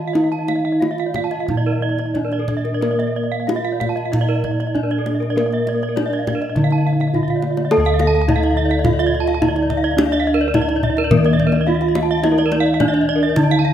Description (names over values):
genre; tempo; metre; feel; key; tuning
Balinese gamelan; 90-106 BPM; 4/4; straight; D pelog; A4 = 440 Hz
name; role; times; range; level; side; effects
gamelan-type bronze metallophone; melody; 0.0-13.7 s; Bb3 to A4; -21 LUFS; right 3 dB; none
gamelan-type bronze metallophone; arpeggios; 0.0-13.7 s; A4 to A5; -25 LUFS; left 7 dB; none
gamelan-type bossed gongs; bass; 0.0-13.7 s; D2 to Bb4; -19 LUFS; equal; none
gamelan-type bronze metallophone; arpeggios; 0.1-13.7 s; Bb4 to A5; -24 LUFS; right 6 dB; none
kendang; percussion; 0.2-13.6 s; none; -25 LUFS; left 3 dB; none
room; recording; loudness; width
light reverb; none; -15 LUFS; side -10 dB against mid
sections
0.0-7.7 A section; 7.7-13.7 B section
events
drum fill 7.3-7.7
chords
none